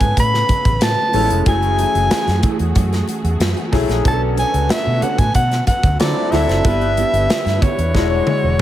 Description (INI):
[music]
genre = polished 1980s jazz-funk pop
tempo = 93 BPM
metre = 4/4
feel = straight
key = unclear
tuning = A4 = 439 Hz
[part]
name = breathy soprano saxophone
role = melody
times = 0.0-8.6 s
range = C#5 to B5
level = -19 LUFS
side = equal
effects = none
[part]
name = clear concert grand piano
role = accompaniment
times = 0.0-8.6 s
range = F#3 to C#5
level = -22 LUFS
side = left 4 dB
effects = wide subtle chorus
[part]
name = dark studio string section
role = sustained chords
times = 0.0-8.6 s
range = C#3 to C#5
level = -27 LUFS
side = right 1 dB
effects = none
[part]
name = mellow electric guitar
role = riff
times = 0.0-8.6 s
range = A3 to C#5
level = -27 LUFS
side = right 8 dB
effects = lush chorus
[part]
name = vintage muted fingered electric bass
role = bass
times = 0.0-8.6 s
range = E1 to D3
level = -19 LUFS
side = equal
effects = none
[part]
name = modern studio drum kit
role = drums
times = 0.0-8.6 s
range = hi-hat, kick drum, snare drum, toms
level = -19 LUFS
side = equal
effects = gated reverb
[part]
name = congas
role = percussion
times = 0.2-8.6 s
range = none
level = -31 LUFS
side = left 1 dB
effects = none
[sound]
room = light reverb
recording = none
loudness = -14 LUFS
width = side -12 dB against mid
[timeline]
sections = 0.0-8.6 A section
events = drum fill 7.9-8.6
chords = 0.0 Amaj9; 1.5 F#m9; 4.1 Bm9; 6.0 D9; 6.6 G6; 7.9 E13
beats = 0.17 0.82 | 1.46 2.11 2.76 3.41 | 4.05 4.70 5.35 6.00 | 6.64 7.29 7.94 8.59